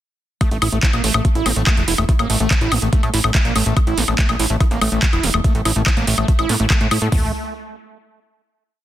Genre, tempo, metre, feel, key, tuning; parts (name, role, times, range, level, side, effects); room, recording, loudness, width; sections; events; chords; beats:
psychedelic trance; 143 BPM; 4/4; straight; A4 = 440 Hz
screaming distorted acid line; riff; 0.4-7.3 s; A3 to E4; -23 LUFS; right 2 dB; distortion, chorus, auto-pan, sidechain pumping, tape echo
garage drum kit; drums; 0.4-7.2 s; hi-hat, kick drum, toms; -17 LUFS; equal; overdrive
garage drum kit; drums; 0.4-7.1 s; handclaps, hi-hat, woodblock; -20 LUFS; left 1 dB; overdrive
plucky analog bass; bass; 0.5-7.3 s; E1 to A2; -20 LUFS; equal
light reverb, digital ambience; dense, heavily limited modern master; -15 LUFS; side -13 dB against mid
0.4-7.1 drop; 7.1-8.8 final note
drop 0.4-7.1
0.4 A5; 7.1 N.C.
| 0.41 0.83 1.25 1.67 | 2.09 2.51 2.93 3.35 | 3.77 4.18 4.61 5.03 | 5.44 5.86 6.28 6.70 | 7.12